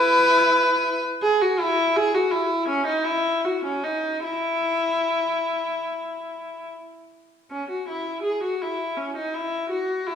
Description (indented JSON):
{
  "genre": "classical, baroque-style suite movement for unaccompanied viola",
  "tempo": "72-85 BPM",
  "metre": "4/4",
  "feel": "rubato",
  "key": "E major",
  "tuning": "A4 = 444 Hz",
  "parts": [
    { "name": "rich viola", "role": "solo", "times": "0.0-10.2 s", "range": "C#4 to B4", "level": "-21 LUFS", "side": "equal", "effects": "none" }
  ],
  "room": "wet recital hall reverb, RT60 1.5 s",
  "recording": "recorded in a church or concert hall",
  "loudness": "-21 LUFS",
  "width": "side -8 dB against mid",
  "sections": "0.0-7.5 A section; 7.5-10.2 A section",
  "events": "none",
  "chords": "none"
}